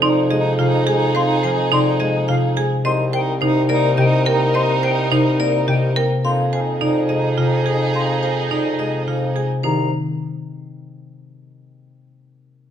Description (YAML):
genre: classical, minimalist pattern music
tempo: 106 BPM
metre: 3/4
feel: straight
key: C minor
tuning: A4 = 440 Hz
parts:
  - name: vibraphone with hard mallets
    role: melody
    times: 0.0-9.9 s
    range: C5 to Ab5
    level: -25 LUFS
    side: left 6 dB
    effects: none
  - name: concert harp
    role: accompaniment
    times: 0.0-11.4 s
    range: C3 to C4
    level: -20 LUFS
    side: left 2 dB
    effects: none
  - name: warm chamber violin section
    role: sustained chords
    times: 0.0-9.5 s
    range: Eb4 to Bb4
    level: -26 LUFS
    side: left 1 dB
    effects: none
  - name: marimba with hard mallets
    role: arpeggios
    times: 0.0-9.9 s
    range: Eb4 to C5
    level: -23 LUFS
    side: right 5 dB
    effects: none
  - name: silver concert flute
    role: arpeggios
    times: 0.0-9.9 s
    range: F5 to C6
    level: -26 LUFS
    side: left 2 dB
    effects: none
  - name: mellow bassoon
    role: bass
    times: 0.0-9.9 s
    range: C2 to F2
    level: -24 LUFS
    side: right 3 dB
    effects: none
  - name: warm soprano saxophone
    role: second line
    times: 0.1-9.4 s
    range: Eb4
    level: -27 LUFS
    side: right 4 dB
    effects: none
room: moderate large studio reverb, RT60 1.4 s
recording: none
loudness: -16 LUFS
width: side -9 dB against mid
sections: 0.0-9.6 A section; 9.6-11.3 B section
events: none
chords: 0.0 Fm7; 2.8 Cm7; 6.2 Fm7; 9.6 Cm7